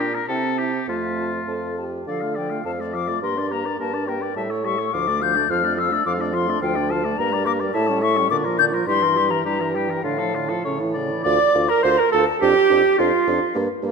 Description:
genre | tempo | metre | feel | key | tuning
quick classical-period movement for wind quintet | 105 BPM | 2/4 | rubato | D minor | A4 = 440 Hz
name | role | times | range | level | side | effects
hollow silver concert flute | melody | 0.0-13.5 s | F5 to G6 | -23 LUFS | left 9 dB | none
warm oboe | second line | 0.0-13.5 s | F4 to F5 | -27 LUFS | left 4 dB | none
clear French horn | accompaniment | 0.0-13.9 s | C#3 to A4 | -29 LUFS | left 1 dB | none
warm clarinet | accompaniment | 0.0-13.5 s | A3 to D5 | -23 LUFS | right 8 dB | none
mellow bassoon | bass | 0.0-13.9 s | D2 to D3 | -26 LUFS | right 2 dB | none
room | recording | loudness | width
wet concert hall reverb, RT60 2.0 s | none | -18 LUFS | side -5 dB against mid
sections
0.0-2.1 A section; 2.1-11.2 B section; 11.2-13.9 C section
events
none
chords
0.3 C; 0.9 F; 2.1 Dm; 2.6 Dm/F; 3.2 Gm; 4.4 A7; 4.9 Dm; 5.5 Dm/F; 6.6 Dm; 7.2 Gm; 7.7 A7; 8.3 Bb; 8.9 Edim/G; 10.0 Dm/A; 10.6 A; 11.2 Dm; 12.4 Dm/F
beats
0.28 | 0.87 1.47 | 2.06 2.65 | 3.22 3.79 | 4.36 4.94 | 5.50 6.06 | 6.62 7.18 | 7.74 8.30 | 8.87 9.45 | 10.04 10.64 | 11.25 11.83 | 12.41 12.98 | 13.54

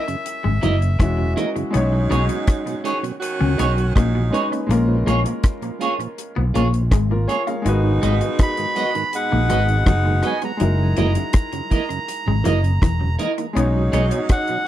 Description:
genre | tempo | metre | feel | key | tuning
lovers rock reggae | 81 BPM | 4/4 | straight | unclear | A4 = 440 Hz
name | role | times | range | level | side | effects
melodica | melody | 0.0-1.3, 8.4-14.7 s | E5 to B5 | -25 LUFS | equal | tape echo
clear baby grand piano | accompaniment | 0.0-14.7 s | G#3 to E#5 | -27 LUFS | left 1 dB | tape echo
tonewheel organ | accompaniment | 0.1-14.6 s | F#2 to D#4 | -28 LUFS | right 5 dB | slow rotary speaker
deep reggae drum kit | drums | 0.1-14.6 s | hi-hat, kick drum, rim click | -20 LUFS | equal | tape echo
twangy electric guitar | riff | 0.4-14.0 s | E3 to C#4 | -27 LUFS | left 5 dB | tape echo
mellow fretless electric bass | bass | 0.5-14.1 s | E1 to C#2 | -19 LUFS | equal | none
clean electric guitar | stabs | 0.6-14.1 s | D#4 to D#5 | -23 LUFS | right 3 dB | lush chorus
bright saxophone section | second line | 1.7-14.7 s | G#2 to F#4 | -26 LUFS | right 3 dB | none
room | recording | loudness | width
small room ambience | dry, close 1970s-style studio recording | -17 LUFS | side -12 dB against mid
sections
0.0-14.7 A section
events
none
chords
0.0 F#13; 1.7 B69; 4.7 A#m7; 7.7 G#m7; 10.6 F#13; 13.6 B69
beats
0.25 0.99 | 1.73 2.48 3.22 3.96 | 4.70 5.44 6.18 6.92 | 7.65 8.39 9.13 9.87 | 10.61 11.35 12.08 12.82 | 13.56 14.30

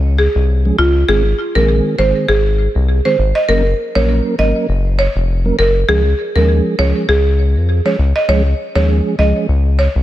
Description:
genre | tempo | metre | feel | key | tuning
dancehall | 100 BPM | 4/4 | swing 56% on 16ths | Db major | A4 = 440 Hz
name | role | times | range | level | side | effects
round analog bass | bass | 0.0-10.0 s | F1 to F2 | -14 LUFS | left 1 dB | none
buzzing marimba with medium hard mallets | melody | 0.2-9.9 s | F4 to Eb5 | -16 LUFS | right 1 dB | tape echo
mellow tonewheel organ | accompaniment | 0.7-9.5 s | Eb3 to Bb4 | -20 LUFS | right 3 dB | fast rotary speaker
room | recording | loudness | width
small room ambience | none | -12 LUFS | side -13 dB against mid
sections
0.0-1.1 A section; 1.1-10.0 B section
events
none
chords
0.0 Db5; 1.1 Ab; 3.5 Gb; 5.9 Db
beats
0.49 | 1.09 1.69 2.29 2.89 | 3.49 4.09 4.69 5.29 | 5.89 6.49 7.09 7.69 | 8.29 8.89 9.49

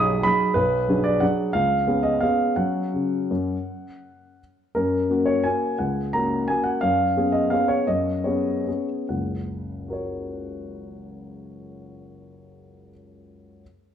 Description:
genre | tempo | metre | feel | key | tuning
classical, piano waltz | 133-193 BPM | 3/4 | rubato | F# major | A4 = 440 Hz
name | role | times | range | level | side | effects
warm upright piano | solo | 0.0-13.6 s | F#1 to D#6 | -21 LUFS | equal | none
room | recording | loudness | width
moderate recital hall reverb, RT60 1.7 s | dark, warm production | -21 LUFS | side -9 dB against mid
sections
0.0-4.7 A section; 4.7-9.1 B section; 9.1-11.4 C section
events
slowing down 6.3-9.1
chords
0.0 G#m7/B; 0.6 G#m7b5/B; 1.5 C#7; 2.6 F#5; 4.7 F#; 6.8 C#7/F#; 9.1 F#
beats
0.25 | 0.57 0.89 1.22 | 1.54 1.86 2.21 | 2.57 2.93 3.30 | 3.65 4.01 4.38 | 4.74 5.10 5.45 | 5.80 6.14 6.49 | 6.82 7.16 7.51 | 7.88 8.26 8.67 | 9.10 9.49 9.88 | 10.27 10.65 11.04

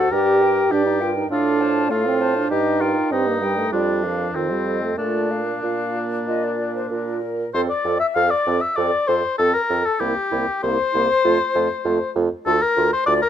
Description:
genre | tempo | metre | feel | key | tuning
quick classical-period movement for wind quintet | 98 BPM | 4/4 | rubato | Bb major, F major from 7.5 s | A4 = 441 Hz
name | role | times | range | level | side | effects
concert flute | melody | 0.0-13.3 s | G4 to A5 | -26 LUFS | left 6 dB | none
warm oboe | second line | 0.0-13.3 s | C4 to F5 | -22 LUFS | left 3 dB | none
warm French horn | accompaniment | 0.0-13.2 s | Eb3 to G4 | -23 LUFS | equal | none
warm clarinet | accompaniment | 0.0-13.2 s | E4 to C5 | -28 LUFS | right 10 dB | none
mellow bassoon | bass | 0.0-13.2 s | C2 to Bb2 | -24 LUFS | right 4 dB | none
room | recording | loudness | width
light reverb | close, detailed microphones | -18 LUFS | side -10 dB against mid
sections
0.0-7.5 A section; 7.5-13.3 B section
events
none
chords
0.1 Gm; 1.3 F/A; 2.5 Eb/G; 3.7 Bb/F; 4.3 F7; 5.0 Bb; 7.5 F; 10.0 C7; 11.2 F; 12.5 Dm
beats
| 0.12 0.71 1.31 1.91 | 2.51 3.12 3.73 4.35 | 4.99 5.63 6.28 6.91 | 7.54 8.16 8.77 9.39 | 10.01 10.64 11.25 11.85 | 12.46 13.08

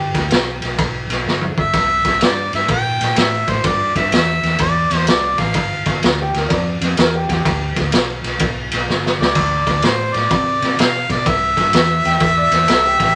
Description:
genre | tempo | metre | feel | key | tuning
electric blues shuffle | 126 BPM | 4/4 | swing 66% on 8ths | G mixolydian | A4 = 440 Hz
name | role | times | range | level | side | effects
warm upright piano | second line | 0.0-1.2, 6.1-7.8, 12.1-13.2 s | F4 to G5 | -27 LUFS | equal | none
vintage muted fingered electric bass | bass | 0.0-13.2 s | G1 to C3 | -25 LUFS | equal | none
raw garage drum kit | drums | 0.1-13.1 s | kick drum, ride cymbal, snare drum, splash cymbal, toms | -20 LUFS | equal | none
bright harmonica | melody | 1.6-6.0, 9.2-13.2 s | C5 to G5 | -19 LUFS | equal | overdrive
room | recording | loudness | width
moderate studio reverb, RT60 0.6 s | none | -17 LUFS | mono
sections
0.0-13.2 A section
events
drum fill 1.3-1.7, 8.9-9.4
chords
0.0 G; 1.7 C7; 5.5 G7; 9.4 D5; 11.3 C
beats
0.31 0.79 1.26 | 1.74 2.21 2.69 3.17 | 3.64 4.12 4.59 5.07 | 5.55 6.02 6.50 6.97 | 7.45 7.93 8.40 8.88 | 9.35 9.83 10.30 10.78 | 11.26 11.73 12.21 12.68

